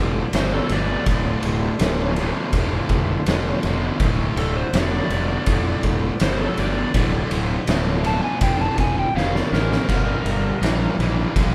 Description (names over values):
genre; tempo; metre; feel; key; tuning
blues rock power trio and southern rock; 82 BPM; 4/4; straight; D minor; A4 = 440 Hz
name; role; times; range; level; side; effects
overdriven slide guitar; melody; 0.0-11.0 s; A4 to A5; -30 LUFS; equal; none
overdriven tonewheel organ; sustained chords; 0.0-11.5 s; F3 to F5; -37 LUFS; equal; none
sludgy distorted guitar; riff; 0.0-11.5 s; D2 to E3; -27 LUFS; equal; overdrive
fuzz fingered electric bass; bass; 0.0-11.5 s; D1 to Bb1; -27 LUFS; equal; overdrive
oversized low-tuned drum kit; drums; 0.3-11.5 s; kick drum, ride cymbal, snare drum, splash cymbal; -25 LUFS; equal; none
room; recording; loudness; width
light reverb; band playing live in one room; -21 LUFS; mono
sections
0.0-11.5 A section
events
drum fill 9.2-9.9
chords
0.0 Dm7; 9.9 Gm7